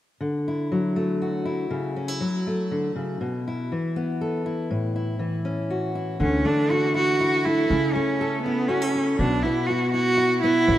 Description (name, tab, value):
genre	acoustic folk duo or small band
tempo	120 BPM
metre	3/4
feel	straight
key	unclear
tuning	A4 = 440 Hz
part	fingerpicked steel-string acoustic guitar	accompaniment	0.2-10.8 s	A2 to A4	-24 LUFS	left 1 dB	none
part	warm cello	melody	6.2-10.8 s	B3 to F#4	-21 LUFS	right 2 dB	none
part	upright bass	bass	6.2-10.8 s	A1 to D2	-26 LUFS	equal	none
room	moderate lush hall reverb, RT60 2.5 s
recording	rough home demo mix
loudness	-22 LUFS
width	side -13 dB against mid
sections	0.2-6.2 A section; 6.2-10.8 B section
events	none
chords	0.2 Dadd9; 1.7 F#m7/C#; 3.2 Bsus4; 4.7 A; 6.2 Dadd9; 7.7 F#m7/C# (rootless); 9.2 Bsus4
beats	| 0.21 0.71 1.21 | 1.71 2.21 2.71 | 3.21 3.71 4.20 | 4.70 5.20 5.70 | 6.20 6.70 7.19 | 7.69 8.19 8.69 | 9.19 9.68 10.18 | 10.68